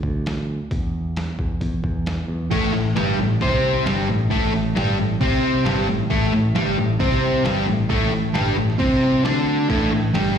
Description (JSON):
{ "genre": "quiet-loud alternative rock", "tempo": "134 BPM", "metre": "4/4", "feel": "straight", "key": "unclear", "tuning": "A4 = 440 Hz", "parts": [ { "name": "picked electric bass", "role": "bass", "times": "0.0-10.4 s", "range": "G1 to E2", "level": "-24 LUFS", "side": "equal", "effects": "none" }, { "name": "lo-fi sampler-style drum kit", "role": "drums", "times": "0.0-10.3 s", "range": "crash cymbal, hi-hat, kick drum, snare drum", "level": "-27 LUFS", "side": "equal", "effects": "none" }, { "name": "overdriven electric guitar", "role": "riff", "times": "2.5-10.4 s", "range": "G2 to D4", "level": "-19 LUFS", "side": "equal", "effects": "slapback echo" } ], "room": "light reverb", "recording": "live gig heard through the venue's PA, recital hall reverb", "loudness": "-18 LUFS", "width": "side -8 dB against mid", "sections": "0.0-2.5 A section; 2.5-10.4 B section", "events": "none", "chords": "0.0 N.C.; 2.5 Gsus24", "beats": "0.26 | 0.71 1.16 1.61 2.06 | 2.51 2.96 3.41 3.86 | 4.31 4.76 5.21 5.66 | 6.11 6.55 7.00 7.45 | 7.90 8.35 8.80 9.25 | 9.70 10.15" }